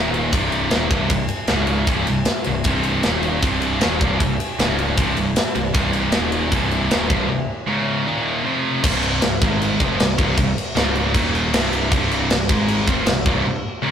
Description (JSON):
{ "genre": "heavy metal", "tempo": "155 BPM", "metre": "4/4", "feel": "straight", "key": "C minor", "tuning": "A4 = 441 Hz", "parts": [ { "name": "scooped high-gain guitar", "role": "riff", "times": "0.0-13.9 s", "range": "C2 to Ab3", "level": "-20 LUFS", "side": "equal", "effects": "distortion" }, { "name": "growling picked electric bass", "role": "bass", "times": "0.0-13.4 s", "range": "C1 to Ab1", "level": "-26 LUFS", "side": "equal", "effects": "overdrive" }, { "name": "tight metal drum kit", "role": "drums", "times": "0.1-13.3 s", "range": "crash cymbal, kick drum, ride cymbal, snare drum", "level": "-20 LUFS", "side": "equal", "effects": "none" } ], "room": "moderate small room reverb, RT60 0.5 s", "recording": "rough rehearsal-room recording, tube saturation", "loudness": "-17 LUFS", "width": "side -8 dB against mid", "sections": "0.0-8.8 A section; 8.8-13.9 B section", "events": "break 7.3-8.8, 13.4-13.9", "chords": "0.3 Cm; 1.5 Db5; 1.9 C5; 3.0 Eb5; 3.4 Cm; 4.6 Db5; 5.0 C5; 6.1 Eb5; 6.5 Cm; 7.7 Db5; 8.1 Eb5; 8.4 F5; 8.8 C5; 9.4 Ab5; 9.8 C5; 10.8 Db5; 11.1 Eb5; 11.5 C5; 12.5 Ab5; 12.9 C5", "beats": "0.33 0.72 | 1.10 1.49 1.88 2.27 | 2.65 3.04 3.42 3.81 | 4.20 4.58 4.97 5.36 | 5.75 6.13 6.52 6.90 | 7.29 7.67 8.06 8.45 | 8.83 9.22 9.60 9.99 | 10.37 10.76 11.14 11.53 | 11.91 12.29 12.68 13.06 | 13.45 13.83" }